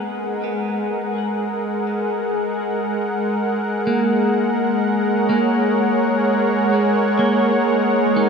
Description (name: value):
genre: ambient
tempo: 63 BPM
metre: 4/4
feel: straight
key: G# minor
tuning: A4 = 440 Hz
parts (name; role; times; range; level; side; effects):
- warm analog pad; sustained chords; 0.0-8.3 s; G#3 to F#5; -19 LUFS; equal; chorus, shimmer reverb
- clean electric guitar; arpeggios; 0.0-8.3 s; A#3 to F#5; -23 LUFS; right 2 dB; spring reverb, ping-pong delay, shimmer reverb
- bowed-like drone; drone; 0.0-8.3 s; G#3; -25 LUFS; left 1 dB; built-in reverb
room: wet lush hall reverb, RT60 2.9 s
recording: dark, warm production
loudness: -17 LUFS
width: side -5 dB against mid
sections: 0.0-8.3 A section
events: none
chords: 0.0 G#m9; 4.3 F#/G#